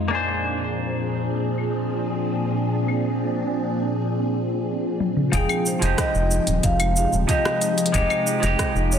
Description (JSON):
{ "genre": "sunset chillout", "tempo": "92 BPM", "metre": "4/4", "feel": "straight", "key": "F minor", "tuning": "A4 = 440 Hz", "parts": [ { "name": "semi-hollow electric guitar", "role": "accompaniment", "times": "0.0-9.0 s", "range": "F3 to G5", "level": "-26 LUFS", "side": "moving between left 5 dB and right 4 dB", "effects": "auto-pan, ping-pong delay" }, { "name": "soft string machine", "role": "sustained chords", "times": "0.0-9.0 s", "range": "Bb2 to G5", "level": "-24 LUFS", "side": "equal", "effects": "phaser, ensemble chorus" }, { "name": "smooth R&B drum kit", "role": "drums", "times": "0.3-9.0 s", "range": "claves, hi-hat, rim click, shaker, toms", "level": "-26 LUFS", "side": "left 2 dB", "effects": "low-pass filter on cymbals, small room reverb, low-pass filter on perc, low-pass filter on toms, low-pass filter on hats, low-pass filter on snare" }, { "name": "vibraphone with soft mallets", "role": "melody", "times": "5.3-9.0 s", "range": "Ab4 to F5", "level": "-26 LUFS", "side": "equal", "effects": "vintage 12-bit sampler grit, tape echo" }, { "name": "round analog bass", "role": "bass", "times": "5.3-9.0 s", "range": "Eb1 to F1", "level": "-22 LUFS", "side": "equal", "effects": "none" }, { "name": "electronic kick drum", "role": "drums", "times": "5.3-8.7 s", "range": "none", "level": "-25 LUFS", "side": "equal", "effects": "small room reverb" }, { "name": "bongos", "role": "percussion", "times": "5.8-8.6 s", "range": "none", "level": "-34 LUFS", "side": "right 1 dB", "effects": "none" } ], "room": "moderate lush hall reverb, RT60 2.0 s, digital ambience", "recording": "dense, heavily limited modern master", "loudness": "-20 LUFS", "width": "side -8 dB against mid", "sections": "0.0-5.3 A section; 5.3-9.0 B section", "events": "drum fill 5.0-5.3", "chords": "0.1 Bb9; 5.3 Fm9" }